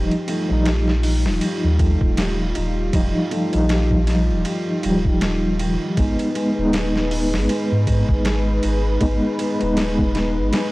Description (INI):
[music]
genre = trip hop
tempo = 79 BPM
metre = 4/4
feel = swing 57% on 16ths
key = unclear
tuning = A4 = 440 Hz
[part]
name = mellow reed electric piano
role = accompaniment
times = 0.0-10.7 s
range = E#3 to G4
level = -22 LUFS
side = equal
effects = fast tremolo, tape echo
[part]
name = dark analog pad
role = sustained chords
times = 0.0-10.7 s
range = G3 to B4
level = -26 LUFS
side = equal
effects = chorus, vintage 12-bit sampler grit
[part]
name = felt-muted upright piano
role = arpeggios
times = 0.0-10.7 s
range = D#3 to G#4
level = -30 LUFS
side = right 2 dB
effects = vintage 12-bit sampler grit, tape echo
[part]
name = soft dub sub bass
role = bass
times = 0.0-10.5 s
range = D#1 to G#2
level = -21 LUFS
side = equal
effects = none
[part]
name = boom bap sampler-style drum kit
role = drums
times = 0.1-10.7 s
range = hi-hat, kick drum, ride cymbal, snare drum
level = -24 LUFS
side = equal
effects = small room ambience
[sound]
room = digital ambience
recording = dry, gritty hardware recording, vinyl crackle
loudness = -17 LUFS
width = side -20 dB against mid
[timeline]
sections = 0.0-10.7 A section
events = none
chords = 0.0 D#add9; 6.0 G#m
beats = 0.66 1.41 2.17 | 2.93 3.69 4.45 5.21 | 5.97 6.73 7.49 8.25 | 9.01 9.77 10.53